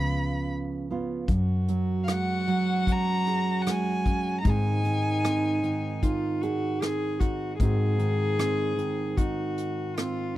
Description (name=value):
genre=acoustic folk-pop ballad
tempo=76 BPM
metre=4/4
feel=straight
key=unclear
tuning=A4 = 440 Hz
part: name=warm violin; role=melody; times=0.0-6.0 s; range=F5 to Cb6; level=-31 LUFS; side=left 1 dB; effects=none
part: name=nylon-string guitar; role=accompaniment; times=0.0-10.4 s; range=Gb2 to Ab4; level=-28 LUFS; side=right 4 dB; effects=none
part: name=vintage muted fingered electric bass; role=bass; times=0.0-10.4 s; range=Db2 to Ab2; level=-29 LUFS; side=left 1 dB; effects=none
part: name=warm cello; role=second line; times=1.3-10.4 s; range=Eb4 to Ab4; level=-31 LUFS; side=left 3 dB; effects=none
part: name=soft brush drum kit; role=drums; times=1.3-10.2 s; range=hi-hat, kick drum, rim click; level=-27 LUFS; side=left 1 dB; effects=none
room=small room ambience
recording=dry, close 1970s-style studio recording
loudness=-24 LUFS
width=side -14 dB against mid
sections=0.0-1.3 A section; 1.3-10.4 B section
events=none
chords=0.0 Db7; 1.3 Gbsus2; 4.5 Ab; 7.6 Ab7